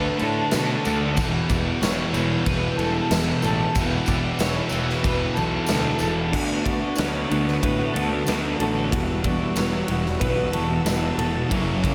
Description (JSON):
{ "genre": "rock, shoegaze and dream pop", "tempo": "93 BPM", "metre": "4/4", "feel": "straight", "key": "unclear", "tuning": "A4 = 440 Hz", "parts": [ { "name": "ensemble organ-string", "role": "sustained chords", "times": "0.0-11.9 s", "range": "G3 to E6", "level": "-38 LUFS", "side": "equal", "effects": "none" }, { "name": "fingerpicked twelve-string acoustic guitar", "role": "arpeggios", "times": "0.0-11.9 s", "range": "A4 to D5", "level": "-32 LUFS", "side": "equal", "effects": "lush chorus, tape echo" }, { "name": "distorted electric guitar", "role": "riff", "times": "0.0-6.3, 11.5-11.9 s", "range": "E2 to D4", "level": "-31 LUFS", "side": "equal", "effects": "overdrive" }, { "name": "electric guitar through a small old amp", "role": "riff", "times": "0.0-11.9 s", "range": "F#2 to F#4", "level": "-32 LUFS", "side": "equal", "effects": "reverse reverb" }, { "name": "thick fuzz guitar", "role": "riff", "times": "0.0-11.9 s", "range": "E2 to D4", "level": "-29 LUFS", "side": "equal", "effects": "distortion, lush chorus" }, { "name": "fuzz picked electric bass", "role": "bass", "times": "0.0-11.9 s", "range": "E1 to B2", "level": "-30 LUFS", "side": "equal", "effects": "overdrive" }, { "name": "huge arena drum kit", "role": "drums", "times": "0.2-11.9 s", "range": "crash cymbal, kick drum, ride cymbal, snare drum", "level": "-30 LUFS", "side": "equal", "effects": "none" }, { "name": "tambourine", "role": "percussion", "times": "0.5-11.0 s", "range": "none", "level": "-40 LUFS", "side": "equal", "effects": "none" } ], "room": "light reverb", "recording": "none", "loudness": "-23 LUFS", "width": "mono", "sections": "0.0-6.3 A section; 6.3-11.9 B section", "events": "none", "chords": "0.0 D; 1.2 Em; 6.3 D6; 8.9 Emadd9", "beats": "0.53 | 1.17 1.82 2.46 3.11 | 3.75 4.40 5.04 5.69 | 6.34 6.99 7.63 8.28 | 8.93 9.57 10.22 10.87 | 11.52" }